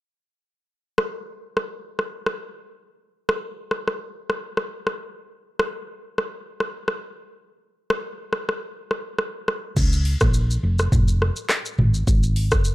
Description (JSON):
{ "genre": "afrobeats", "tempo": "104 BPM", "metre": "4/4", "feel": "swing 55% on 16ths", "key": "Bb minor", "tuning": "A4 = 442 Hz", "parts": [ { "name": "afro-pop drum kit", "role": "drums", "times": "1.0-12.7 s", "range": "crash cymbal, handclaps, hi-hat, kick drum, rim click, shaker, toms", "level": "-23 LUFS", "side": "equal", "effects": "none" }, { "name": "hollow-body short-scale fingered electric bass", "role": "bass", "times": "9.8-12.7 s", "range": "F1 to Db2", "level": "-20 LUFS", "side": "equal", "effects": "none" } ], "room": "digital ambience", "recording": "none", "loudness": "-22 LUFS", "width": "side -18 dB against mid", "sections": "0.5-9.8 A section; 9.8-12.7 B section", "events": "none", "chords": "none", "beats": "| 0.54 1.11 1.69 2.27 | 2.84 3.42 4.00 4.57 | 5.15 5.73 6.30 6.88 | 7.46 8.04 8.61 9.19 | 9.77 10.34 10.92 11.50 | 12.07 12.65" }